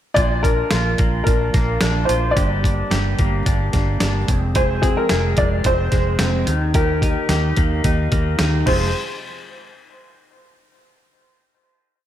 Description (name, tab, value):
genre	jangly indie pop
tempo	109 BPM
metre	4/4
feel	straight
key	unclear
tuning	A4 = 435 Hz
part	dark upright piano	melody	0.1-8.9 s	Ab4 to D5	-23 LUFS	equal	slapback echo, tape echo
part	fingerpicked plugged-in steel-string acoustic guitar	accompaniment	0.2-8.9 s	F2 to Ab4	-27 LUFS	right 5 dB	slapback echo
part	electric guitar through a small old amp	arpeggios	0.2-8.9 s	F2 to Ab4	-25 LUFS	left 3 dB	wide subtle chorus, slapback echo, tape echo
part	vintage muted fingered electric bass	bass	0.2-8.9 s	F1 to Eb2	-21 LUFS	equal	none
part	boom bap sampler-style drum kit	drums	0.2-8.8 s	crash cymbal, hi-hat, kick drum, snare drum	-20 LUFS	equal	none
room	moderate recital hall reverb, RT60 1.5 s, digital ambience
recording	big arena sound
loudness	-16 LUFS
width	side -11 dB against mid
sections	0.2-8.9 verse; 8.9-11.1 final hit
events	none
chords	0.2 Bb; 2.4 Gm; 4.3 Fm; 6.5 Eb; 8.7 Fm; 8.9 N.C.